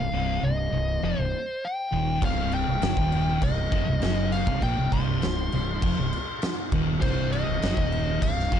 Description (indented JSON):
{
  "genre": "stoner and doom metal",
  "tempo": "100 BPM",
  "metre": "4/4",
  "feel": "straight",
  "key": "unclear",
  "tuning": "A4 = 440 Hz",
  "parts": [
    { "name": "fuzz lead guitar", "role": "melody", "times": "0.0-8.6 s", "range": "C5 to C6", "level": "-30 LUFS", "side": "left 1 dB", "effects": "distortion, ping-pong delay" },
    { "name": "thick fuzz guitar", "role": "riff", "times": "0.0-8.6 s", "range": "C2 to Bb3", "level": "-27 LUFS", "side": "equal", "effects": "distortion" },
    { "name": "fuzz fingered electric bass", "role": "bass", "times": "0.0-8.6 s", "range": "C1 to Bb1", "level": "-29 LUFS", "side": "equal", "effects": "overdrive" },
    { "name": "oversized low-tuned drum kit", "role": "drums", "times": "2.2-8.6 s", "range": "crash cymbal, kick drum, snare drum", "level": "-28 LUFS", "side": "equal", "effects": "none" }
  ],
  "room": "little or no reverb",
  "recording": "dark, warm production, nothing above 10.5 kHz",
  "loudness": "-23 LUFS",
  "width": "side -9 dB against mid",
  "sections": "0.0-8.6 A section",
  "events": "none",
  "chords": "0.0 Cm",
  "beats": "0.44 1.04 1.63 | 2.23 2.83 3.43 4.03 | 4.63 5.23 5.83 6.42 | 7.02 7.62 8.22"
}